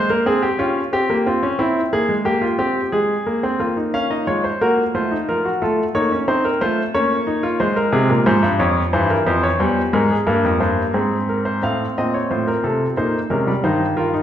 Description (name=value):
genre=classical, baroque-style 4-part fugue for grand piano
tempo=90 BPM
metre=3/4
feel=straight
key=unclear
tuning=A4 = 438 Hz
part: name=clear grand piano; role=solo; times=0.0-14.2 s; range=E2 to F5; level=-16 LUFS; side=equal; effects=none
room=wet recital hall reverb, RT60 1.4 s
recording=recorded in a church or concert hall, nothing above 10.9 kHz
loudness=-16 LUFS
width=side -10 dB against mid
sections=0.0-3.6 A section; 3.6-11.6 B section; 11.6-14.2 C section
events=none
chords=0.0 Fm; 0.9 C5; 1.6 C7; 2.9 Abadd9; 3.6 Bbm; 5.0 F/A; 5.6 F7/A; 6.9 Bbm; 7.6 Fm; 8.9 C/G; 9.6 C7/E; 10.9 Abadd9; 11.6 F/A; 13.0 Bbm; 13.6 Eb/G